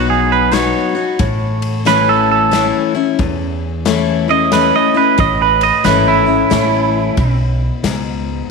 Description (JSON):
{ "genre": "honky-tonk and classic country", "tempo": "90 BPM", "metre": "3/4", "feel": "swing 64% on 8ths", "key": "unclear", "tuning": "A4 = 439 Hz", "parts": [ { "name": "twangy electric guitar", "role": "second line", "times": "0.0-7.4 s", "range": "E4 to D#5", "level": "-14 LUFS", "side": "right 8 dB", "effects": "tape echo" }, { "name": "picked steel-string acoustic guitar", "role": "accompaniment", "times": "0.0-8.5 s", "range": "E2 to F#4", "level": "-16 LUFS", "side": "left 9 dB", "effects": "none" }, { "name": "upright bass", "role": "bass", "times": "0.0-8.4 s", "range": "G#1 to E2", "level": "-19 LUFS", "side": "right 1 dB", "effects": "none" }, { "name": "natural country drum kit", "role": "drums", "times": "0.5-8.0 s", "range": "kick drum, ride cymbal, snare drum", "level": "-23 LUFS", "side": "left 4 dB", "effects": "none" } ], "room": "wet echo chamber reverb, RT60 2.2 s", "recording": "1960s-style stereo with parts hard left and right", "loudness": "-12 LUFS", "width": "side -4 dB against mid", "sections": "0.0-8.5 A section", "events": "clean electric guitar solo 0.0-8.5", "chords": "0.0 B; 1.2 A; 7.2 N.C." }